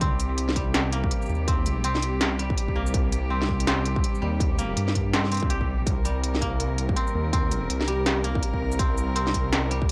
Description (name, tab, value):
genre	half-time drum and bass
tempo	164 BPM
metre	4/4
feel	swing 60% on 16ths, half-time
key	C minor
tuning	A4 = 440 Hz
part	rich chamber cello section	sustained chords	0.0-9.9 s	C3 to Bb4	-35 LUFS	equal	vintage 12-bit sampler grit, sidechain pumping
part	koto	arpeggios	0.0-9.9 s	C3 to G4	-34 LUFS	equal	analog delay
part	dark detuned saw bass	bass	0.0-9.9 s	C2 to G2	-29 LUFS	equal	none
part	electronic kick drum	drums	0.0-9.9 s	none	-29 LUFS	equal	distortion
part	industrial drum kit	drums	0.0-9.9 s	hi-hat, shaker, snare drum	-29 LUFS	equal	none
part	airy dreamy lead	melody	2.0-2.4, 7.9-8.2 s	G4	-37 LUFS	equal	chorus, analog delay
room	light reverb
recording	dry, gritty hardware recording, cassette tape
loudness	-25 LUFS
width	mono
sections	0.0-9.9 A section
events	none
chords	0.0 C5